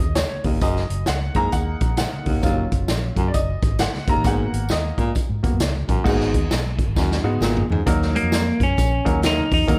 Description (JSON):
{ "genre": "uptempo 1960s-style soul", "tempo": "132 BPM", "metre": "4/4", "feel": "swing 63% on 8ths", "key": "Eb minor", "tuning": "A4 = 440 Hz", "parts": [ { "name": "clear upright piano", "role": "accompaniment", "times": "0.0-9.8 s", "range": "Gb3 to Bb5", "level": "-28 LUFS", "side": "equal", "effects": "none" }, { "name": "vintage muted fingered electric bass", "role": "bass", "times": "0.0-9.8 s", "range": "Gb1 to Ab2", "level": "-26 LUFS", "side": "equal", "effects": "none" }, { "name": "swinging big-band drum kit", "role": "drums", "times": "0.2-9.8 s", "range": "crash cymbal, hi-hat, kick drum, snare drum, toms", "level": "-25 LUFS", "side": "equal", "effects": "none" }, { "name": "congas", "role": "percussion", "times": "0.2-9.8 s", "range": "none", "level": "-39 LUFS", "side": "equal", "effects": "none" }, { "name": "tambourine", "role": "percussion", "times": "0.2-9.8 s", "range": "none", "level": "-42 LUFS", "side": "equal", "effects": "none" }, { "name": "breathy baritone saxophone", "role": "riff", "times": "0.4-7.8 s", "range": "Eb2 to Bb2", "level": "-29 LUFS", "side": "equal", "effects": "none" }, { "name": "clean electric guitar", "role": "melody", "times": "8.2-9.8 s", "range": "Bb3 to Eb4", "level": "-23 LUFS", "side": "equal", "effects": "none" } ], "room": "light reverb", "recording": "none", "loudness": "-21 LUFS", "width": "mono", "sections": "0.0-6.1 A section; 6.1-7.9 B section; 7.9-9.8 C section", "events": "upright piano solo 0.0-6.1; drum fill 7.0-7.9", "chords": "0.0 N.C.; 0.6 Gb6; 2.4 Ebm7/Gb; 4.2 Abm7; 7.9 Ebm", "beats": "0.16 | 0.62 1.07 1.52 1.98 | 2.43 2.88 3.34 3.79 | 4.24 4.70 5.15 5.60 | 6.05 6.51 6.96 7.41 | 7.87 8.32 8.77 9.23 | 9.68" }